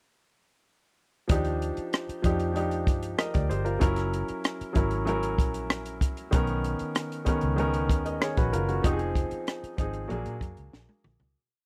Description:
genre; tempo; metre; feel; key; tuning
lush 1970s-style soul; 96 BPM; 4/4; straight; unclear; A4 = 438 Hz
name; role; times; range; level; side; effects
clear baby grand piano; accompaniment; 1.3-11.4 s; D#3 to Eb5; -32 LUFS; equal; none
vintage muted fingered electric bass; bass; 1.3-11.3 s; F1 to Bb2; -34 LUFS; equal; none
compact cocktail drum kit; drums; 1.3-11.3 s; hi-hat, kick drum, rim click, snare drum, toms; -29 LUFS; equal; none
room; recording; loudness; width
studio reverb; dry, close 1970s-style studio recording; -28 LUFS; mono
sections
1.3-11.4 verse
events
fade-out 8.8-11.4; drum fill 10.7-11.4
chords
1.3 Ebmaj9; 3.8 Gb7; 6.3 Bmaj9; 8.8 Fm7; 10.1 Bb7alt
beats
| 1.30 1.93 2.56 3.19 | 3.82 4.45 5.07 5.70 | 6.33 6.96 7.59 8.22 | 8.84 9.47 10.10 10.73

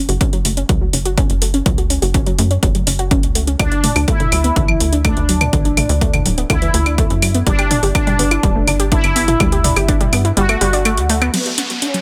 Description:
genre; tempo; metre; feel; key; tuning
melodic techno; 124 BPM; 4/4; straight; F# phrygian; A4 = 440 Hz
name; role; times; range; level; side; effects
warbly dusty pluck; arpeggios; 0.1-12.0 s; D3 to G4; -23 LUFS; equal; chorus, sidechain pumping, delay
tight sequencer bass; bass; 0.1-11.3 s; D1 to G2; -21 LUFS; equal; sidechain pumping
deep house drum kit; drums; 0.1-12.0 s; claves, crash cymbal, hi-hat, toms; -22 LUFS; equal; overdrive
electronic kick drum; drums; 0.2-10.0 s; none; -20 LUFS; equal; none
resonant sweep polysynth; melody; 3.6-12.0 s; B3 to F#4; -23 LUFS; equal; chorus, sidechain pumping, tape echo
downlifter; sound effects; 11.3-12.0 s; none; -24 LUFS; equal; none
room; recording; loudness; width
little or no reverb; none; -15 LUFS; mono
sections
0.0-11.3 A section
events
filter sweep on synth arpeggio sound 0.0-11.3; kick drops out 10.4-11.3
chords
0.0 F#5; 3.6 D; 7.5 G5; 11.3 F#5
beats
0.21 0.69 1.18 | 1.66 2.14 2.63 3.11 | 3.60 4.08 4.56 5.05 | 5.53 6.01 6.50 6.98 | 7.47 7.95 8.43 8.92 | 9.40 9.88 10.37 10.85 | 11.34 11.82

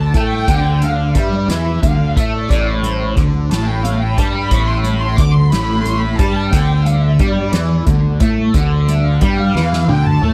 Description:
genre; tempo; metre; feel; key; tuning
psychedelic rock; 60 BPM (dotted quarters); 6/8; straight; unclear; A4 = 440 Hz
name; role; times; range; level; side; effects
dark symphonic string section; sustained chords; 0.0-10.3 s; C5 to D6; -26 LUFS; equal; none
fuzz guitar; riff; 0.0-10.3 s; A2 to A3; -18 LUFS; equal; distortion, phaser
modern bright fingered electric bass; bass; 0.0-10.3 s; A1 to A2; -22 LUFS; equal; none
soft-mallet drum kit; drums; 0.1-10.3 s; hi-hat, kick drum, snare drum, toms; -20 LUFS; equal; none
congas; percussion; 0.2-10.3 s; none; -33 LUFS; equal; none
room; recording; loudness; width
little or no reverb; dry, close 1970s-style studio recording; -15 LUFS; mono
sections
0.0-10.3 A section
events
string section solo 0.0-10.3; drum fill 9.6-10.3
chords
0.0 D5; 2.5 Am11; 6.5 D5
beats
| 0.48 1.49 | 2.50 3.51 | 4.52 5.53 | 6.53 7.54 | 8.54 9.55

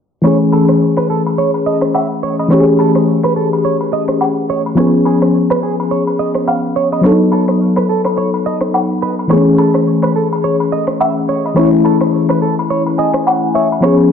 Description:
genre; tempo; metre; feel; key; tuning
afrobeats; 106 BPM; 4/4; swing 58% on 16ths; unclear; A4 = 439 Hz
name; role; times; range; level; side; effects
mellow FM electric piano; accompaniment; 0.2-14.1 s; E3 to G#5; -12 LUFS; left 2 dB; chorus, tremolo
direct-recorded clean electric guitar; riff; 0.2-14.0 s; G#4 to E#5; -19 LUFS; right 8 dB; analog chorus, diffuse ambient delay
electronic finger snaps and rim click; drums; 0.2-14.0 s; none; -23 LUFS; right 2 dB; none
agogo bells and woodblock; percussion; 0.2-14.0 s; none; -23 LUFS; left 2 dB; none
room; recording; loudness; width
wet plate reverb, RT60 1.4 s, digital ambience; dreamy mix soaked in reverb, low-pass filter; -11 LUFS; side -7 dB against mid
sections
0.2-14.1 A section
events
filter sweep 0.2-14.1; hi-hats muted 7.0-9.3; FM electric piano fill 12.7-13.8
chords
0.2 Amaj7; 4.8 C#7; 7.0 B7; 9.3 Amaj7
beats
| 0.24 0.81 1.38 1.94 | 2.51 3.07 3.64 4.21 | 4.77 5.34 5.90 6.47 | 7.04 7.60 8.17 8.73 | 9.30 9.87 10.43 11.00 | 11.56 12.13 12.70 13.26 | 13.83

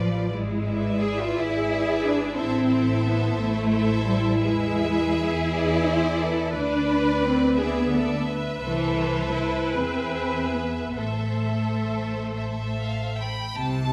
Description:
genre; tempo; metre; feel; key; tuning
classical, slow romantic movement for string orchestra; 42-61 BPM (dotted quarters); 6/8; rubato; A minor; A4 = 439 Hz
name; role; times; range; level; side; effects
clear studio violin section; melody; 0.0-13.9 s; D5 to B5; -36 LUFS; equal; none
rich studio violin section; second line; 0.0-13.3 s; G#4 to D5; -34 LUFS; equal; none
clear studio viola section; accompaniment; 0.0-13.0 s; E4 to B4; -32 LUFS; equal; none
clear studio cello section; bass; 0.0-13.9 s; C3 to G#4; -28 LUFS; equal; none
dark studio double bass section; bass; 0.0-13.9 s; G#1 to E2; -31 LUFS; equal; none
room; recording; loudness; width
moderate scoring stage reverb, RT60 1.8 s; none; -24 LUFS; mono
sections
0.0-13.6 A section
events
none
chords
0.3 E7/G#; 2.4 Am; 4.4 E; 6.5 E5/D; 8.6 Am/C; 9.7 E; 11.0 Am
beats
| 0.32 1.35 | 2.36 3.38 | 4.42 5.54 | 6.54 7.58 | 8.64 9.74 | 10.97 12.37 | 13.56

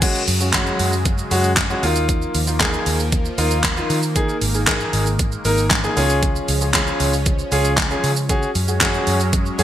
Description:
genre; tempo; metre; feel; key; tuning
dance-pop; 116 BPM; 4/4; straight; unclear; A4 = 440 Hz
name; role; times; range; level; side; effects
clear grand piano; accompaniment; 0.0-9.6 s; Ab3 to Bb4; -22 LUFS; equal; sidechain pumping
lush unison pad; sustained chords; 0.0-9.6 s; Db3 to Db4; -28 LUFS; equal; chorus, phaser, sidechain pumping
pop drum kit; drums; 0.0-9.6 s; crash cymbal, handclaps, hi-hat, kick drum, shaker, snare drum; -20 LUFS; equal; overdrive, gated reverb
vintage muted fingered electric bass; bass; 0.3-9.6 s; Ab1 to Eb3; -22 LUFS; equal; sidechain pumping
group handclap; percussion; 0.5-8.9 s; none; barely audible; none; none
room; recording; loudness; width
light reverb; bright 1980s-style digital production; -16 LUFS; side -11 dB against mid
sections
0.0-9.6 A section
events
none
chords
0.0 Gbsus2; 1.8 Ebsus2; 4.2 Absus2; 6.0 Db; 8.3 Gbsus2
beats
| 0.02 0.54 1.05 1.57 | 2.09 2.61 3.12 3.64 | 4.16 4.67 5.19 5.71 | 6.23 6.74 7.26 7.78 | 8.30 8.81 9.33

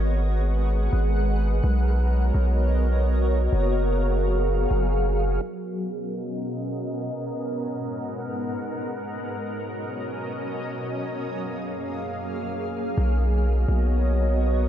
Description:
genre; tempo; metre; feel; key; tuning
hip hop, atmospheric cloud-rap; free time; none; none; B lydian; A4 = 440 Hz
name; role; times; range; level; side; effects
shimmering ambient pad; sustained chords; 0.0-14.7 s; F#2 to F#5; -27 LUFS; equal; chorus, built-in reverb, low-pass filter
long sustained 808-style bass; bass; 0.0-5.4, 13.0-14.7 s; F#1 to B1; -21 LUFS; equal; none
room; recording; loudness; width
digital ambience; none; -23 LUFS; side -10 dB against mid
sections
0.0-5.4 A section; 5.4-13.0 B section; 13.0-14.7 C section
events
filter sweep on ambient pad 5.4-13.0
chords
0.0 G#m7; 1.6 Bmaj7; 3.5 F#maj7; 5.4 Bmaj7; 7.3 G#m7; 9.2 Bmaj7; 11.1 F#maj7; 13.0 Bmaj7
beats
free time

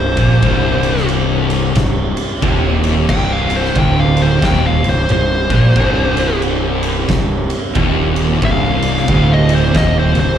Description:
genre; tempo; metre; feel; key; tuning
stoner and doom metal; 90 BPM; 4/4; swing 62% on 8ths; C minor; A4 = 440 Hz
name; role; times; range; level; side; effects
fuzz lead guitar; melody; 0.0-10.4 s; C5 to G5; -19 LUFS; left 1 dB; distortion, slapback echo, tape echo
tonewheel organ; sustained chords; 0.0-10.4 s; C3 to C4; -30 LUFS; right 1 dB; none
crunchy overdriven guitar; riff; 0.0-10.4 s; C2 to Bb2; -20 LUFS; right 1 dB; slapback echo
thick fuzz guitar; riff; 0.0-10.4 s; C2 to Bb2; -19 LUFS; left 5 dB; distortion
thick fuzz guitar; riff; 0.0-10.4 s; C2 to Bb2; -21 LUFS; right 8 dB; distortion
fuzz fingered electric bass; bass; 0.0-10.4 s; C1 to Bb1; -18 LUFS; equal; overdrive
oversized low-tuned drum kit; drums; 0.2-10.3 s; crash cymbal, kick drum, ride cymbal, snare drum; -19 LUFS; right 1 dB; none
room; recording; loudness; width
studio reverb; live gig heard through the venue's PA, recital hall reverb; -12 LUFS; side -9 dB against mid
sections
0.0-10.4 A section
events
lead electric guitar solo 0.0-10.4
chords
0.0 Cm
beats
| 0.44 1.10 1.77 2.43 | 3.10 3.77 4.43 5.10 | 5.76 6.43 7.09 7.76 | 8.42 9.09 9.75

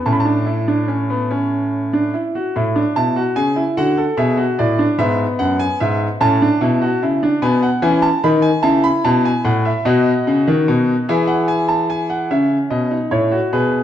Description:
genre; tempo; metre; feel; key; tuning
classical, baroque-style 3-part fugue for grand piano; 49 BPM (dotted quarters); 6/8; straight; A major; A4 = 443 Hz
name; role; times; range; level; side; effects
bright grand piano; solo; 0.0-13.8 s; F#2 to B5; -14 LUFS; equal; none
room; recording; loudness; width
wet recital hall reverb, RT60 1.6 s; dark, warm production; -14 LUFS; side -10 dB against mid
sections
0.0-2.5 A section; 2.5-12.3 B section; 12.3-13.8 A section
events
none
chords
0.1 A; 3.8 D; 5.0 E; 6.2 A; 7.4 E/B; 8.6 A; 9.8 B; 11.1 E; 12.3 A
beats
| 0.06 1.31 | 2.55 3.77 | 4.99 6.21 | 7.42 8.63 | 9.85 11.07 | 12.30 13.53

